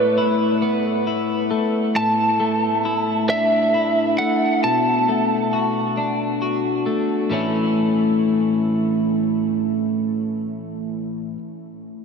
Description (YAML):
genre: rock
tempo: 45 BPM (dotted quarters)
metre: 6/8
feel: straight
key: A major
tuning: A4 = 439 Hz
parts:
  - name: lightly driven lead guitar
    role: melody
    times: 0.0-6.4 s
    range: B4 to A5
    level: -21 LUFS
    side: right 1 dB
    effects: analog delay
  - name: twelve-string electric guitar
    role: arpeggios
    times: 0.0-11.4 s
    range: A2 to F#4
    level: -20 LUFS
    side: left 1 dB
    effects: wide subtle chorus, analog delay
room: wet huge ambient reverb, RT60 8.0 s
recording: dreamy mix soaked in reverb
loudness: -18 LUFS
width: side -5 dB against mid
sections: 0.0-7.3 A section; 7.3-10.0 B section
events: none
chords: 0.0 Asus2; 2.0 Dsus2/A; 4.6 Bm7; 7.3 A